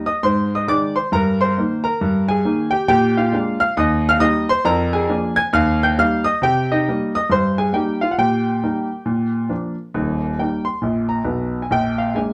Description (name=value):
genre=jazz, stride piano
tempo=136 BPM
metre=4/4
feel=swing 60% on 8ths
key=Eb major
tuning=A4 = 436 Hz
part: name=clear baby grand piano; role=solo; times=0.0-12.3 s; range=Eb1 to Ab6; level=-19 LUFS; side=equal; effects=none
room=moderate small room reverb, RT60 0.5 s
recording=dark, warm production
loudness=-19 LUFS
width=mono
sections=0.0-9.9 A section; 9.9-12.3 B section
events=none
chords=0.3 Ab; 1.1 Eb/G; 2.9 Bb7; 3.8 Eb; 4.7 Bb7/F; 5.5 Eb; 6.4 Cm7; 8.2 Eb/Bb; 9.1 Bb; 9.9 Eb; 11.7 Bb7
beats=0.25 0.69 | 1.13 1.57 2.01 2.45 | 2.89 3.33 3.77 4.21 | 4.65 5.09 5.54 5.98 | 6.42 6.86 7.30 7.74 | 8.18 8.62 9.06 9.51 | 9.95 10.39 10.83 11.27 | 11.71 12.16